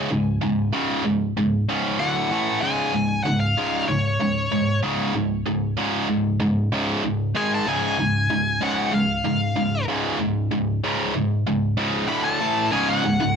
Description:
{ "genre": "metal", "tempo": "95 BPM", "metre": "4/4", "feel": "straight", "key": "unclear", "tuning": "A4 = 440 Hz", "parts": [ { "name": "tight distorted guitar", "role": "riff", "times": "0.0-13.3 s", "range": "C#2 to A3", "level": "-21 LUFS", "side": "equal", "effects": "distortion" }, { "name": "high-gain lead guitar", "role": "melody", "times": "2.0-13.4 s", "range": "C#5 to B5", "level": "-24 LUFS", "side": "left 3 dB", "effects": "distortion, ping-pong delay" } ], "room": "light reverb", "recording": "dark, warm production", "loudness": "-20 LUFS", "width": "side -6 dB against mid", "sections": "0.0-12.7 A section", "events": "none", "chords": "0.0 C#5; 2.0 D5; 2.3 A5; 2.6 C#5; 7.4 G#5; 7.7 C#; 12.1 D5; 12.4 A5; 12.7 C#5" }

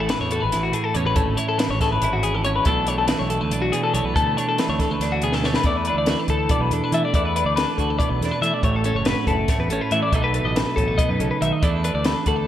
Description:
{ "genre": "math rock and midwest emo", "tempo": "281 BPM (eighths)", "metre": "7/8", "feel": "straight", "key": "unclear", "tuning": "A4 = 439 Hz", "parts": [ { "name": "twelve-string electric guitar", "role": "accompaniment", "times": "0.0-12.5 s", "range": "A2 to A4", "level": "-25 LUFS", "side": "right 4 dB", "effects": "none" }, { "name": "twelve-string electric guitar", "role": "arpeggios", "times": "0.0-12.5 s", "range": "F#4 to E5", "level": "-23 LUFS", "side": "left 4 dB", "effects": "spring reverb" }, { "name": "growling fingered electric bass", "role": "bass", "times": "0.0-12.4 s", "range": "F#1 to E3", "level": "-26 LUFS", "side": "equal", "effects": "overdrive" }, { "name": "compact cocktail drum kit", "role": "drums", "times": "0.1-12.4 s", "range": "hi-hat, kick drum, snare drum", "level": "-24 LUFS", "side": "equal", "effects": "none" } ], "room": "moderate lush hall reverb, RT60 2.5 s", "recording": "big arena sound", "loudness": "-19 LUFS", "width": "side -11 dB against mid", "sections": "0.0-5.6 A section; 5.6-12.5 B section", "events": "drum fill 5.3-5.6", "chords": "0.0 Amaj9; 2.7 E7sus4/B; 5.6 E7sus4; 8.6 A6; 10.1 B7; 11.6 E7sus4" }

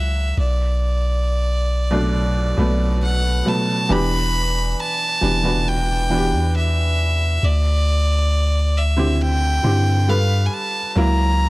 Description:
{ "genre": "contemporary R&B", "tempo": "68 BPM", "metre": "4/4", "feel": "straight", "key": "E minor", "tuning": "A4 = 440 Hz", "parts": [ { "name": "clear violin", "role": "melody", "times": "0.0-11.5 s", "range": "D5 to B5", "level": "-23 LUFS", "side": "equal", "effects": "none" }, { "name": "felt-muted upright piano", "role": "accompaniment", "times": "0.0-11.5 s", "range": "B2 to B4", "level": "-22 LUFS", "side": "right 1 dB", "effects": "none" }, { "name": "long sustained 808-style bass", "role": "bass", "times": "0.0-11.5 s", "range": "E1 to G2", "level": "-18 LUFS", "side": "equal", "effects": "none" } ], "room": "small room ambience", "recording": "dry, gritty hardware recording, cassette tape", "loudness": "-16 LUFS", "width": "side -20 dB against mid", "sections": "0.0-3.9 A section; 3.9-11.5 B section", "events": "none", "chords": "0.4 Bm7; 3.9 Em7; 7.4 D9sus4; 10.1 G9; 11.0 F#7/C#" }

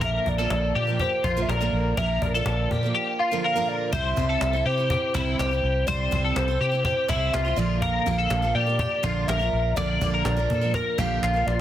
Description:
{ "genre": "jangly indie pop", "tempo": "123 BPM", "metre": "4/4", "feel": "straight", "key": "unclear", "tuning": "A4 = 440 Hz", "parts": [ { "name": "hollow clarinet-like synth lead", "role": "melody", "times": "0.0-11.6 s", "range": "Bb4 to F5", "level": "-27 LUFS", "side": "equal", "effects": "chorus" }, { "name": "picked steel-string acoustic guitar", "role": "accompaniment", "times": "0.0-11.6 s", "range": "Bb2 to C5", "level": "-30 LUFS", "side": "right 6 dB", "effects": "none" }, { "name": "twelve-string electric guitar", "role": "arpeggios", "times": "0.0-11.6 s", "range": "E4 to D5", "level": "-28 LUFS", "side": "left 4 dB", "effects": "tube saturation, ensemble chorus, digital delay" }, { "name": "vintage muted fingered electric bass", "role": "bass", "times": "0.0-11.6 s", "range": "Bb1 to C3", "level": "-26 LUFS", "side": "equal", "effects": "none" }, { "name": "cajon", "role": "drums", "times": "0.0-11.6 s", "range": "none", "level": "-32 LUFS", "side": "equal", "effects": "none" }, { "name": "group handclap", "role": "percussion", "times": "4.4-11.3 s", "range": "none", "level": "-40 LUFS", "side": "right 2 dB", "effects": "none" } ], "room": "small room ambience", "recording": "dense, heavily limited modern master", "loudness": "-22 LUFS", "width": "side -12 dB against mid", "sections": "0.0-3.9 A section; 3.9-11.6 B section", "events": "drum fill 11.2-11.6", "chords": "0.0 Bb; 3.9 C; 7.6 Bb" }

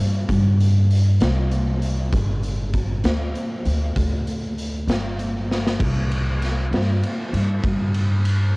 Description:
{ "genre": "slow blues", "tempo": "65 BPM (dotted quarters)", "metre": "12/8", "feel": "straight", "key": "unclear", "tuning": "A4 = 440 Hz", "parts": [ { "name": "upright bass", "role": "bass", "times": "0.0-8.5 s", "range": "G1 to G2", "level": "-20 LUFS", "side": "equal", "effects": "transformer saturation" }, { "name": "raw garage drum kit", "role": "drums", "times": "0.3-8.4 s", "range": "crash cymbal, hi-hat, kick drum, ride cymbal, snare drum", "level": "-24 LUFS", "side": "equal", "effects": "cassette tape" } ], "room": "little or no reverb", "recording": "home recording on cassette", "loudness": "-19 LUFS", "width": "side -28 dB against mid", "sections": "0.0-5.8 A section; 5.8-8.6 B section", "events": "drum fill 5.5-5.8", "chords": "none" }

